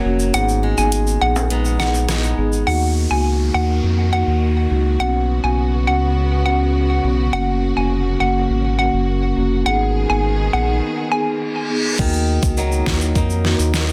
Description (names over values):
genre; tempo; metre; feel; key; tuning
dancehall; 103 BPM; 4/4; straight; Eb minor; A4 = 440 Hz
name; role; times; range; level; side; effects
marimba with soft mallets; accompaniment; 0.0-13.6 s; Bb3 to Ab4; -24 LUFS; equal; none
flamenco guitar; arpeggios; 0.0-3.2, 12.0-13.9 s; Ab2 to Eb4; -28 LUFS; equal; delay
round analog bass; bass; 0.0-13.9 s; F1 to F2; -21 LUFS; equal; none
tube shaker and timbales; percussion; 0.2-2.7, 12.0-13.9 s; none; -31 LUFS; equal; none
hollow square pluck; melody; 0.3-11.2 s; Gb5 to Ab5; -25 LUFS; equal; chorus, delay
pop drum kit; drums; 0.3-2.2, 12.0-13.9 s; crash cymbal, hi-hat, kick drum, rim click, snare drum; -24 LUFS; equal; overdrive
warm studio string section; sustained chords; 2.7-12.0 s; C#3 to Ab4; -29 LUFS; equal; sidechain pumping
downlifter and reverse cymbal; sound effects; 2.7-12.0 s; none; -32 LUFS; equal; none
room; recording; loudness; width
light reverb, studio ambience; dense, heavily limited modern master; -18 LUFS; mono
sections
0.0-2.7 A section; 2.7-12.0 B section; 12.0-13.9 C section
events
kick muted 0.3-2.7; reverse cymbal 11.3-12.0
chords
0.3 Abm; 2.7 Ebm; 5.0 Bsus2; 7.3 Gb; 9.7 Abm; 12.0 Ebm